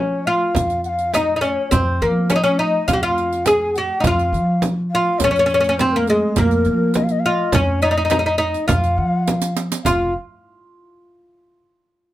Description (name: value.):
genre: Arabic maqam ensemble.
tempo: 103 BPM.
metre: 4/4.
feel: straight.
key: F maqam bayati.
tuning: A4 = 440 Hz.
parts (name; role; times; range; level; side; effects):
oud; melody; 0.0-10.1 s; Ab3 to Ab4; -18 LUFS; equal; none.
breathy low ney; second line; 0.0-10.1 s; Ab4 to Ab5; -22 LUFS; left 3 dB; none.
upright bass; bass; 0.0-10.1 s; F1 to F3; -22 LUFS; equal; none.
frame drum; percussion; 0.5-10.1 s; none; -22 LUFS; right 2 dB; none.
riq; percussion; 0.6-10.1 s; none; -28 LUFS; right 7 dB; none.
room: moderate small room ambience, RT60 0.5 s.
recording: none.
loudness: -16 LUFS.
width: side -14 dB against mid.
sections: 0.0-9.9 A section; 9.9-12.1 B section.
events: drum fill 9.3-9.9.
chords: none.